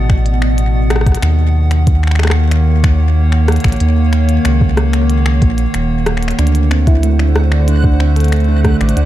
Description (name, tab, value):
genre	IDM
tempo	93 BPM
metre	4/4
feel	straight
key	unclear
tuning	A4 = 439 Hz
part	warbly tape-like pad	sustained chords	0.0-9.1 s	B2 to F#5	-18 LUFS	right 1 dB	chorus, built-in reverb
part	round analog bass	bass	0.0-9.1 s	D#1 to D#2	-12 LUFS	equal	none
part	electronic kick drum	drums	0.1-8.8 s	none	-12 LUFS	equal	overdrive
part	glitchy drum kit	drums	0.1-9.1 s	finger snaps, hi-hat, rim click	-22 LUFS	left 2 dB	overdrive, digital delay
part	harp-like synth pluck	arpeggios	6.4-9.0 s	A3 to D5	-19 LUFS	right 8 dB	chorus, tape echo
part	backwards swelling texture	texture	6.9-9.1 s	F#5	-30 LUFS	equal	built-in reverb
room	little or no reverb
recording	dark, warm production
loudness	-10 LUFS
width	side -13 dB against mid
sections	0.0-9.1 A section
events	none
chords	0.0 Bm; 1.2 D#m7; 6.4 D7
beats	0.58 | 1.23 1.87 2.52 3.16 | 3.81 4.45 5.10 5.74 | 6.39 7.03 7.68 8.32 | 8.97